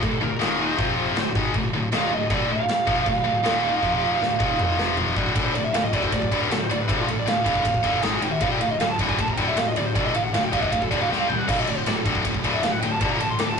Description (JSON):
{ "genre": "heavy metal", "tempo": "157 BPM", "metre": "4/4", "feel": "straight", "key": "D phrygian", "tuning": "A4 = 440 Hz", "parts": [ { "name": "bluesy overdriven lead guitar", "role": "melody", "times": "0.0-13.6 s", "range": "F4 to D6", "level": "-25 LUFS", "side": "right 3 dB", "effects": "distortion" }, { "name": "heavy high-gain guitar", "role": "riff", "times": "0.0-13.6 s", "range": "D2 to C4", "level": "-24 LUFS", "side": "left 5 dB", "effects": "distortion" }, { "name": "scooped high-gain guitar", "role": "riff", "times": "0.0-13.6 s", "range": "D2 to C4", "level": "-31 LUFS", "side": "right 3 dB", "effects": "distortion" }, { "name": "fuzz fingered electric bass", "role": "bass", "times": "0.0-13.6 s", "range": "D1 to C#2", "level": "-32 LUFS", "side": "left 1 dB", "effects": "overdrive" }, { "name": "big rock drum kit", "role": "drums", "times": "0.0-13.6 s", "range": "china cymbal, crash cymbal, kick drum, ride cymbal, snare drum, toms", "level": "-26 LUFS", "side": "right 1 dB", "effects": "none" } ], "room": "moderate booth ambience, RT60 0.2 s", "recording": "rough rehearsal-room recording, warm saturation, nothing above 10.9 kHz", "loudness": "-20 LUFS", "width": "side -6 dB against mid", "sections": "0.0-5.4 A section; 5.4-13.6 B section", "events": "drum fill 3.8-5.4, 11.1-11.5; lead electric guitar solo 5.4-13.6", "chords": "0.4 Eb5; 0.8 F5; 1.2 Dm; 3.4 Eb5; 3.8 F5; 4.2 Dm; 4.4 Eb5; 4.8 F5; 5.2 D5; 5.4 Dm; 8.0 G#5; 8.4 D5; 11.1 C5; 11.5 D5" }